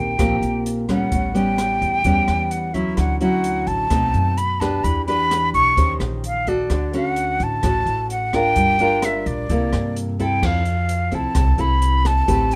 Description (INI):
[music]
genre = bossa nova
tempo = 129 BPM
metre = 4/4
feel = straight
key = unclear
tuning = A4 = 440 Hz
[part]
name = breathy concert flute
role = melody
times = 0.0-12.6 s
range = D5 to C#6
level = -23 LUFS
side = equal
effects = none
[part]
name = nylon-string guitar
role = accompaniment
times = 0.0-12.6 s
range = A2 to C5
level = -25 LUFS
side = equal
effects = none
[part]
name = upright bass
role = bass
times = 0.0-12.6 s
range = G1 to G2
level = -26 LUFS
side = equal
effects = none
[part]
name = open jazz drum kit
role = drums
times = 0.2-12.6 s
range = crash cymbal, hi-hat, kick drum, rim click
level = -29 LUFS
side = equal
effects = none
[sound]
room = light reverb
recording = none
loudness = -20 LUFS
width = mono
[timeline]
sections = 0.0-10.4 A section; 10.4-12.6 B section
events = none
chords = 0.0 Eb6; 1.1 A9; 3.0 Dmaj9; 3.9 B7b9; 4.8 Em7; 5.8 Eb6; 6.7 Dmaj7; 8.6 Gm7; 9.5 C13; 10.4 Fmaj7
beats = 0.18 0.65 | 1.11 1.58 2.04 2.51 | 2.97 3.44 3.90 4.37 | 4.83 5.30 5.77 6.23 | 6.70 7.16 7.63 8.09 | 8.56 9.02 9.49 9.95 | 10.42 10.88 11.35 11.82 | 12.28